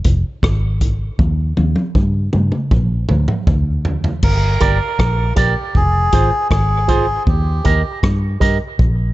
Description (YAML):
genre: dub reggae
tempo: 79 BPM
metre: 4/4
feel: straight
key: unclear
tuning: A4 = 442 Hz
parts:
  - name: vintage drum kit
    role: drums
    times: 0.0-9.0 s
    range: crash cymbal, hi-hat, kick drum, rim click, toms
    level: -18 LUFS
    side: equal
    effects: none
  - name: vintage muted fingered electric bass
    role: bass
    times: 0.1-9.1 s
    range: F1 to G2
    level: -16 LUFS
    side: equal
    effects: none
  - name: melodica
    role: melody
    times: 4.2-8.0 s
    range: G4 to Bb4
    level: -20 LUFS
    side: equal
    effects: dub echo
  - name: electric guitar with an envelope filter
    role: accompaniment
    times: 4.6-8.6 s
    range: F4 to Eb5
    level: -22 LUFS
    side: right 6 dB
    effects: dub echo
room: studio reverb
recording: dark, warm production, nothing above 8.0 kHz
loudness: -14 LUFS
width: side -17 dB against mid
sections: 0.0-4.2 A section; 4.2-9.1 B section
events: break 0.0-4.2; drum fill 1.2-4.2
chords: 0.0 Fm; 1.2 Eb; 2.7 Bb; 4.2 Gm; 5.8 Fm; 7.3 Eb